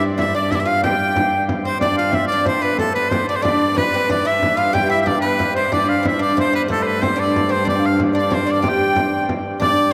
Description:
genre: medieval dance.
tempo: 123 BPM (dotted quarters).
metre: 6/8.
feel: straight.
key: G mixolydian.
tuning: A4 = 440 Hz.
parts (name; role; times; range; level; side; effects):
edgy shawm; melody; 0.0-9.9 s; A4 to G5; -22 LUFS; equal; none.
alto recorder; second line; 0.0-9.9 s; A4 to G5; -25 LUFS; equal; none.
warm viola da gamba; drone; 0.0-9.9 s; G2; -28 LUFS; equal; none.
frame drum; percussion; 0.0-9.8 s; none; -27 LUFS; equal; none.
oud; second line; 0.2-9.9 s; A3 to G4; -25 LUFS; equal; none.
room: wet cathedral reverb, RT60 6.0 s.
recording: in a vast, echoing space.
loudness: -18 LUFS.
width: mono.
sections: 0.0-1.8 A section; 1.8-9.6 B section.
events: none.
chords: none.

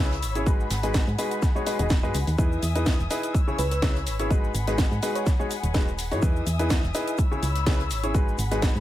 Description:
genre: piano house.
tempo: 125 BPM.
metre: 4/4.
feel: swing 54% on 16ths.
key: G# minor.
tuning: A4 = 440 Hz.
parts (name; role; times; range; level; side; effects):
muted studio string section; sustained chords; 0.0-8.8 s; G#4 to E6; -34 LUFS; left 4 dB; sidechain pumping.
clear upright piano; riff; 0.0-8.7 s; C#3 to D#5; -29 LUFS; left 1 dB; sidechain pumping, ping-pong delay.
solid FM bass; bass; 0.0-8.8 s; D#1 to G#2; -27 LUFS; equal; sidechain pumping.
house drum kit; drums; 0.1-8.8 s; cabasa, hi-hat, snare drum; -31 LUFS; equal; none.
jazz brush drum kit; drums; 0.1-8.8 s; hi-hat, shaker, snare drum; -40 LUFS; equal; high-pass filter on hats, high-pass filter on snare, high-pass filter on perc, high-pass filter on room.
electronic kick drum; drums; 0.5-8.7 s; none; -23 LUFS; equal; none.
bell-like FM electric piano; melody; 3.6-5.2 s; B4 to C#5; -34 LUFS; right 2 dB; chorus, tremolo, ping-pong delay.
room: studio reverb.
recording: none.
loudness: -22 LUFS.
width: side -13 dB against mid.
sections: 0.0-8.8 A section.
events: none.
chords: 0.5 G#m7; 2.4 Emaj7; 3.3 C#m7; 4.3 G#m7; 6.2 Emaj7; 7.2 C#m7; 8.1 G#m7.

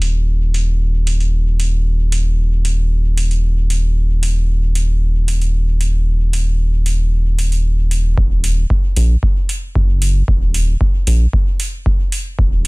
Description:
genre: dub techno.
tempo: 114 BPM.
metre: 4/4.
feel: straight.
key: Eb minor.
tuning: A4 = 440 Hz.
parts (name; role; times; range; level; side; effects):
round analog bass; bass; 0.0-12.7 s; Eb1 to Bb1; -14 LUFS; equal; sidechain pumping.
electronic hi-hat; drums; 0.0-12.7 s; none; -25 LUFS; right 1 dB; low-pass filter on hats, low-pass filter on room.
electronic kick drum; drums; 8.2-12.5 s; none; -16 LUFS; equal; none.
room: little or no reverb.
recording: dense, heavily limited modern master.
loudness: -14 LUFS.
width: side -29 dB against mid.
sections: 0.0-8.2 A section; 8.2-12.7 B section.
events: none.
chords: none.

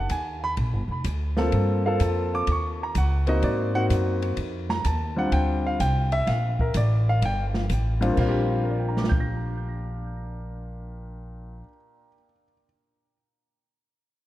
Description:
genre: jazz piano trio.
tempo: 126 BPM.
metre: 4/4.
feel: swing 68% on 8ths.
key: Bb major.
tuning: A4 = 441 Hz.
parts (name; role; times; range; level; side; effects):
clear concert grand piano; melody; 0.0-12.6 s; Bb2 to Bb6; -27 LUFS; left 1 dB; analog delay.
upright bass; bass; 0.0-11.6 s; F1 to Ab2; -25 LUFS; equal; none.
open jazz drum kit; drums; 0.1-9.3 s; crash cymbal, hi-hat, kick drum, ride cymbal, snare drum; -32 LUFS; equal; none.
room: moderate plate reverb, RT60 2.4 s.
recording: dreamy mix soaked in reverb.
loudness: -22 LUFS.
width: side -15 dB against mid.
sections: 0.0-8.2 A section; 8.2-12.0 B section.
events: none.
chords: 0.0 B (rootless); 0.6 Bb6; 1.5 Gm11; 2.5 Ebm7; 3.4 Ab9; 4.4 Bb6.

